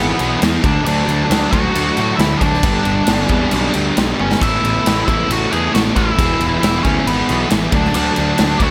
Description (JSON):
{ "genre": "quiet-loud alternative rock", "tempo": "136 BPM", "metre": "4/4", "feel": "straight", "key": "unclear", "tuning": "A4 = 440 Hz", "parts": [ { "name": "octave-fuzz lead guitar", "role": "melody", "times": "0.0-8.7 s", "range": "B3 to G#5", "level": "-22 LUFS", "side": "equal", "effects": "distortion" }, { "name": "overdriven electric guitar", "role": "riff", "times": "0.0-8.7 s", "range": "D3 to A4", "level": "-24 LUFS", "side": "equal", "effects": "none" }, { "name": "thick fuzz guitar", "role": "riff", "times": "0.0-8.7 s", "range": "D3 to A4", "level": "-24 LUFS", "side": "equal", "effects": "distortion" }, { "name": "fuzz picked electric bass", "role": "bass", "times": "0.0-8.7 s", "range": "E1 to A2", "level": "-23 LUFS", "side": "equal", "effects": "overdrive" }, { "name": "big rock drum kit", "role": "drums", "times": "0.2-8.7 s", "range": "crash cymbal, kick drum, snare drum, toms", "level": "-21 LUFS", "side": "equal", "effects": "none" } ], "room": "studio reverb", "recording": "none", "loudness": "-16 LUFS", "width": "mono", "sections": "0.0-8.7 A section", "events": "drum fill 4.2", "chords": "0.0 E; 0.6 Dadd9; 2.6 G; 4.4 Asus2; 6.2 E; 7.7 D" }